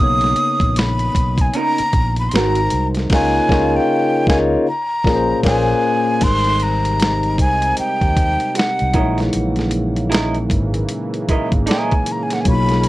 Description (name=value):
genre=R&B, neo-soul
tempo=77 BPM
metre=4/4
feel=swing 61% on 16ths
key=unclear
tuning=A4 = 439 Hz
part: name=breathy jazz flute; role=melody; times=0.0-12.9 s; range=Gb5 to Eb6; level=-20 LUFS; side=equal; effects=none
part: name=barky tine electric piano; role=accompaniment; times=0.0-12.9 s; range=Bb2 to C#5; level=-20 LUFS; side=left 2 dB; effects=overdrive, phaser
part: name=fretless electric bass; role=bass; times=0.0-12.9 s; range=Ab1 to Eb2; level=-21 LUFS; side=equal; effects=none
part: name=boom bap sampler-style drum kit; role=drums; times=0.2-12.9 s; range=crash cymbal, hi-hat, kick drum, snare drum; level=-19 LUFS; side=equal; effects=none
part: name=electric guitar through a small old amp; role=second line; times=1.5-2.6, 8.6-11.9 s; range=C4 to Eb5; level=-21 LUFS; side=right 3 dB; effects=none
part: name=warm analog pad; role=sustained chords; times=6.2-12.9 s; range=C3 to E#4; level=-25 LUFS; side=right 2 dB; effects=chorus
room=light reverb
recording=worn, warbling old tape, cassette tape, warbly pitch drift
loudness=-15 LUFS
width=side -16 dB against mid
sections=0.0-6.2 A section; 6.2-12.9 B section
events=band accent 3.1-6.2; drums muted 5.4-6.2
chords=0.0 Bmaj9; 2.3 Ab9; 3.1 Db69; 4.7 Bbm9; 6.2 Abmaj7; 8.9 Gb13